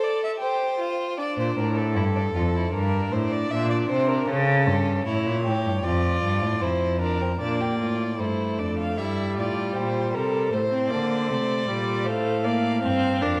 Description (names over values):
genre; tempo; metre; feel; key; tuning
classical, baroque-style fugue for string quartet; 77 BPM; 4/4; straight; D minor; A4 = 440 Hz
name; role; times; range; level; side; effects
rich violin; melody; 0.0-13.4 s; A4 to F5; -31 LUFS; equal; none
rich violin; second line; 0.0-13.4 s; C4 to D5; -32 LUFS; equal; none
rich cello; bass; 1.4-13.4 s; F2 to D3; -27 LUFS; equal; none
rich viola; accompaniment; 7.4-13.4 s; G3 to D4; -29 LUFS; equal; none
room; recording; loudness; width
wet scoring stage reverb, RT60 1.9 s; none; -24 LUFS; mono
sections
0.0-7.4 A section; 7.4-13.4 B section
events
none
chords
0.0 Am; 1.2 Dm; 2.7 Gm; 4.3 A7; 5.8 Dm/F; 9.0 Edim/G; 10.5 Am; 12.1 F/A